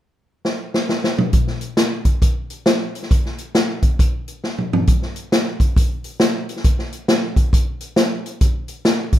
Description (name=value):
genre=gospel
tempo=136 BPM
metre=4/4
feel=swing 63% on 8ths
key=none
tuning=none
part: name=swinging big-band drum kit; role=drums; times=0.4-9.2 s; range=hi-hat, kick drum, snare drum, toms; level=-16 LUFS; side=equal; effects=none
room=light reverb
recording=rough home demo mix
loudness=-17 LUFS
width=side -12 dB against mid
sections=0.0-1.3 A section; 1.3-4.9 B section; 4.9-9.2 C section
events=drum fill 0.4-1.3, 4.4-4.9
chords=none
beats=0.01 0.45 0.89 | 1.33 1.78 2.22 2.66 | 3.11 3.55 3.99 4.43 | 4.88 5.32 5.76 6.20 | 6.64 7.08 7.53 7.97 | 8.41 8.85